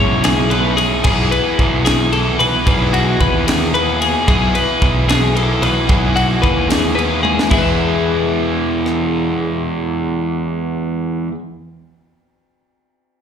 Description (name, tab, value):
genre	math rock and midwest emo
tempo	74 BPM (dotted quarters)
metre	6/8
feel	straight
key	E major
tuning	A4 = 440 Hz
part	twelve-string electric guitar	arpeggios	0.0-11.4 s	E4 to E5	-19 LUFS	left 6 dB	wide subtle chorus, slapback echo
part	biting overdriven guitar	riff	0.0-11.3 s	B2 to G#4	-18 LUFS	right 2 dB	spring reverb, slapback echo
part	fuzz picked electric bass	bass	0.0-11.3 s	B1 to E2	-19 LUFS	equal	overdrive
part	crisp fusion drum kit	drums	0.2-9.0 s	crash cymbal, kick drum, ride cymbal, rim click, snare drum, toms	-19 LUFS	equal	none
room	small room ambience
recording	live gig heard through the venue's PA, club reverb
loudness	-13 LUFS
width	side -8 dB against mid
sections	0.0-7.5 A section; 7.5-10.7 B section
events	drum fill 7.2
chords	0.0 Amaj9 (rootless); 1.0 Emaj7/B; 7.5 E